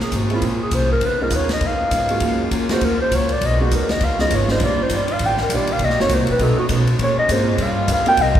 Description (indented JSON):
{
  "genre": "jazz, big band swing",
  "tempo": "201 BPM",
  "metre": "4/4",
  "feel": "swing 60% on 8ths",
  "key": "Bb minor",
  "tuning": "A4 = 436 Hz",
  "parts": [
    { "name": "dark clarinet", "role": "melody", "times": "0.0-8.4 s", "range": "E4 to G5", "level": "-20 LUFS", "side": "equal", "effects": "none" },
    { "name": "fingerpicked acoustic archtop guitar", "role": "accompaniment", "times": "0.0-8.4 s", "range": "Ab2 to C5", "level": "-27 LUFS", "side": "left 3 dB", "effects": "none" },
    { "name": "warm saxophone section", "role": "sustained chords", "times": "0.0-8.4 s", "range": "C3 to Gb4", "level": "-31 LUFS", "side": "equal", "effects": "none" },
    { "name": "upright bass", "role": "bass", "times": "0.0-8.4 s", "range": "Gb1 to B2", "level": "-22 LUFS", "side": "equal", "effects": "none" },
    { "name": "swinging big-band drum kit", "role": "drums", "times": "0.0-8.4 s", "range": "hi-hat, kick drum, ride cymbal, snare drum", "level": "-24 LUFS", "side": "equal", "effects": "none" },
    { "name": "clear concert grand piano", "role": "accompaniment", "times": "0.3-8.2 s", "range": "Gb3 to Bb4", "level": "-26 LUFS", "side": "right 3 dB", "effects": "none" }
  ],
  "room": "wet church reverb, RT60 3.4 s",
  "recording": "recorded in a church or concert hall",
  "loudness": "-16 LUFS",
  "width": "side -10 dB against mid",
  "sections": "0.0-8.4 A section",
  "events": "clarinet solo 0.0-8.4",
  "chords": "0.0 Bbm9; 1.0 Db9; 2.2 Gbmaj7; 3.4 Abm7; 4.0 Db9; 4.6 Ebmaj9; 5.8 Cm7b5; 6.4 B9; 7.0 Bbm9; 7.6 G7",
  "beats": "0.13 0.43 0.73 | 1.03 1.33 1.62 1.92 | 2.22 2.52 2.82 3.12 | 3.42 3.71 4.01 4.31 | 4.61 4.91 5.21 5.50 | 5.80 6.10 6.40 6.70 | 6.99 7.29 7.59 7.89 | 8.19"
}